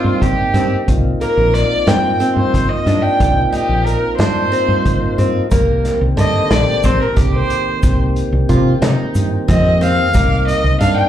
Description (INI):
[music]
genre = progressive instrumental, band music in an uneven meter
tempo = 181 BPM (eighths)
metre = 7/8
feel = straight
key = C minor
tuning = A4 = 440 Hz
[part]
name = rich violin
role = melody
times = 0.0-11.1 s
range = F4 to G5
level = -18 LUFS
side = equal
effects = slapback echo
[part]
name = mellow tonewheel organ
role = accompaniment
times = 0.0-11.1 s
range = Eb3 to G4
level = -22 LUFS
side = equal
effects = slow rotary speaker, slapback echo
[part]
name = picked twelve-string acoustic guitar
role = arpeggios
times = 0.0-11.1 s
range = D3 to G4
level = -21 LUFS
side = equal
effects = slapback echo, tape echo
[part]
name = woody fretless electric bass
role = bass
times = 0.0-10.9 s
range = Bb1 to C3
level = -16 LUFS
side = equal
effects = lush chorus
[part]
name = vintage drum kit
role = drums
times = 0.2-11.0 s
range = hi-hat, kick drum, snare drum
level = -19 LUFS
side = equal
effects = none
[part]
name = tube shaker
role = percussion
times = 5.5-10.4 s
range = none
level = -39 LUFS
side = left 2 dB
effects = none
[sound]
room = light reverb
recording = live gig heard through the venue's PA, club reverb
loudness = -12 LUFS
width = side -11 dB against mid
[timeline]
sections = 0.0-5.5 A section; 5.5-11.1 B section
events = violin solo 5.5-11.1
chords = 0.0 Cm7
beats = 0.22 0.55 | 0.88 1.21 1.54 1.87 2.20 2.54 2.87 | 3.20 3.53 3.86 4.19 4.52 4.85 5.18 | 5.51 5.85 6.18 6.51 6.84 7.17 7.50 | 7.83 8.16 8.49 8.82 9.15 9.48 9.81 | 10.15 10.48 10.81